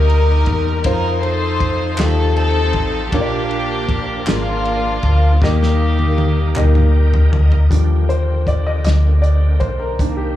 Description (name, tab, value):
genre	slow gospel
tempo	52 BPM (dotted quarters)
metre	6/8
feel	straight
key	Eb major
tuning	A4 = 439 Hz
part	warm studio string section	melody	0.0-6.9 s	Bb3 to C5	-20 LUFS	left 1 dB	slapback echo
part	warm upright piano	accompaniment	0.0-10.4 s	Bb2 to Eb5	-23 LUFS	equal	slapback echo
part	bright tonewheel organ	sustained chords	0.0-10.4 s	D3 to G5	-28 LUFS	right 1 dB	fast rotary speaker, overdrive, chorus vibrato
part	metallic FM bass	bass	0.0-10.4 s	Ab1 to F2	-15 LUFS	equal	none
part	warm soul drum kit	drums	0.1-10.2 s	hi-hat, kick drum, ride cymbal, snare drum, toms	-21 LUFS	left 2 dB	none
part	group handclap	percussion	2.0-6.9 s	none	-31 LUFS	right 2 dB	slapback echo
room	little or no reverb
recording	live gig heard through the venue's PA, club reverb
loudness	-13 LUFS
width	side -13 dB against mid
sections	0.0-7.7 A section; 7.7-10.4 B section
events	drum fill 5.4-7.7; tonewheel organ fill 6.6-7.7; upright piano solo 7.7-10.4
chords	0.0 Eb; 0.9 F7; 3.1 Bb; 5.4 Eb; 7.7 Ebmaj7